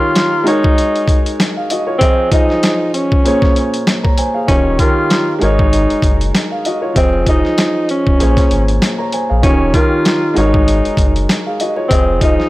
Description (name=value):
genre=hip hop, boom-bap hip-hop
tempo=97 BPM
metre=4/4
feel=swing 57% on 16ths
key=unclear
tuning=A4 = 438 Hz
part: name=mellow tenor saxophone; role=melody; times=0.0-12.5 s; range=C4 to F4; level=-16 LUFS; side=equal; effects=high-pass filter, low-pass filter, analog delay
part: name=dark concert grand piano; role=accompaniment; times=0.0-12.5 s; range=Bb2 to Bb5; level=-16 LUFS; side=equal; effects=cassette tape, high-pass filter, low-pass filter
part: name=boom bap sampler-style drum kit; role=drums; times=0.2-12.5 s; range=hi-hat, kick drum, snare drum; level=-15 LUFS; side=equal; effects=none
part: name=warm sub bass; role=bass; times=4.5-12.4 s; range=Eb1 to Bb1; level=-17 LUFS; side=equal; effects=tube saturation
room=studio reverb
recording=dry, gritty hardware recording, vinyl crackle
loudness=-11 LUFS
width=side -18 dB against mid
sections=0.0-4.5 A section; 4.5-12.5 B section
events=break 0.0-4.5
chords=0.5 Ab7sus4; 2.0 Fm7; 3.2 Bbm7; 4.5 Eb7; 5.4 Ab7sus4; 7.0 Fm7; 8.2 Bbm7; 9.4 Eb7; 10.4 Ab7sus4; 11.9 Fm7